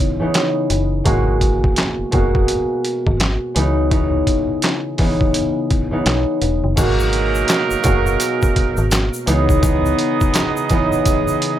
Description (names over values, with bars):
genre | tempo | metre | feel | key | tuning
hip hop, boom-bap hip-hop | 84 BPM | 4/4 | swing 62% on 16ths | G# minor | A4 = 440 Hz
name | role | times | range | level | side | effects
concert harp | accompaniment | 0.0-11.6 s | B2 to F#4 | -19 LUFS | equal | cassette tape, high-pass filter, low-pass filter
trip hop sampler-style drum kit | drums | 0.3-11.6 s | crash cymbal, handclaps, hi-hat, kick drum, snare drum | -19 LUFS | equal | none
metallic FM bass | bass | 0.7-9.9 s | E1 to C#2 | -19 LUFS | equal | none
warm horn section | stabs | 6.8-11.6 s | F#3 to D#5 | -21 LUFS | right 7 dB | high-pass filter, low-pass filter, digital delay
egg shaker | percussion | 6.8-11.4 s | none | -33 LUFS | left 3 dB | none
room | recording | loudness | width
light reverb | none | -15 LUFS | side -11 dB against mid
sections
0.0-6.8 A section; 6.8-11.6 B section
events
none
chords
0.0 C#m9; 1.1 G#m9; 3.6 C#m9; 6.8 G#m9; 9.3 C#m9